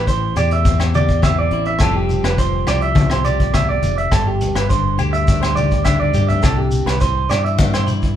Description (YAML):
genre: highlife guitar band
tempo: 104 BPM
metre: 4/4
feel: straight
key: C major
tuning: A4 = 440 Hz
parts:
  - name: clean electric guitar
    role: accompaniment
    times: 0.0-8.2 s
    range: E2 to G4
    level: -24 LUFS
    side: left 5 dB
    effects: none
  - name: clean electric guitar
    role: arpeggios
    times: 0.0-7.9 s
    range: G4 to E5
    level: -20 LUFS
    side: right 4 dB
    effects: none
  - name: fingered electric bass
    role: bass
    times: 0.0-8.2 s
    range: F1 to G2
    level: -20 LUFS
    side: equal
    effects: none
  - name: vintage brush drum kit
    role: drums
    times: 0.1-8.2 s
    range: hi-hat, kick drum, rim click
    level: -20 LUFS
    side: equal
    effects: none
  - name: congas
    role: percussion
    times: 0.1-8.0 s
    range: none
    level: -23 LUFS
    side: left 3 dB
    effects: none
  - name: shekere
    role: percussion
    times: 0.1-8.1 s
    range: none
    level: -28 LUFS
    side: equal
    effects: none
  - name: agogo bells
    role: percussion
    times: 0.4-7.9 s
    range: none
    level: -30 LUFS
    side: left 2 dB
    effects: none
room: moderate large studio reverb, RT60 1.3 s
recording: band playing live in one room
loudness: -14 LUFS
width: side -10 dB against mid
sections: 0.0-8.2 A section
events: drum fill 6.0-6.4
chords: 0.0 Am; 1.8 Fsus2; 4.1 G5; 6.4 Cadd9